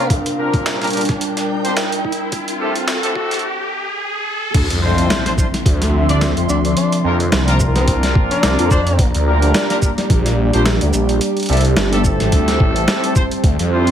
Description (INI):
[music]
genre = glitch hop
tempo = 108 BPM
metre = 4/4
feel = swing 56% on 16ths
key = D minor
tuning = A4 = 439 Hz
[part]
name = mellow tenor saxophone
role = melody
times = 0.0-0.2, 6.1-9.1 s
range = C4 to D4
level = -25 LUFS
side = left 2 dB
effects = vintage 12-bit sampler grit, ping-pong delay
[part]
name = warbly tape-like pad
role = sustained chords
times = 0.0-13.9 s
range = A2 to E5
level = -24 LUFS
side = equal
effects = chorus, built-in reverb, sidechain pumping
[part]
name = warm horn section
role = stabs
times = 0.0-13.9 s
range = A3 to D5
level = -22 LUFS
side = left 1 dB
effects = sidechain pumping, low-pass filter, ping-pong delay
[part]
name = riser and impact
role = sound effects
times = 0.1-6.8 s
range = none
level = -24 LUFS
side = equal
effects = none
[part]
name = airy breathy pad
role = texture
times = 0.0-13.9 s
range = F3 to C6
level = -24 LUFS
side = right 1 dB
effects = chorus, sidechain pumping
[part]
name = boom bap sampler-style drum kit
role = drums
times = 0.1-13.9 s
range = crash cymbal, hi-hat, shaker, snare drum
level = -21 LUFS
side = equal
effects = high-pass filter on hats, high-pass filter on snare, high-pass filter on cymbals, high-pass filter on perc, high-pass filter on room
[part]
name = electronic kick drum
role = drums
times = 0.1-13.6 s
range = none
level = -16 LUFS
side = equal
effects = none
[part]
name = phased detuned saw bass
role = bass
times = 4.5-13.9 s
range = G1 to F2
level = -16 LUFS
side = equal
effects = phaser, overdrive
[sound]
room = light reverb, digital ambience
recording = vinyl crackle, high-pass filter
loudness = -14 LUFS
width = side -9 dB against mid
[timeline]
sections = 0.0-4.5 A section; 4.5-13.9 B section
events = build-up 0.0-4.5; filter sweep on horn section 0.0-4.5; filter sweep 0.0-4.5; riser 0.1-4.5; break 3.4-4.5; drop 4.5-13.9; impact 4.5-6.8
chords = 0.1 Bb6; 2.3 Am7; 4.5 Dm9; 6.8 C9sus4; 9.0 Bb6; 11.2 Am7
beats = | 0.10 0.66 1.21 1.77 | 2.33 2.88 3.44 3.99 | 4.55 5.10 5.66 6.21 | 6.77 7.33 7.88 8.44 | 8.99 9.55 10.10 10.66 | 11.21 11.77 12.32 12.88 | 13.44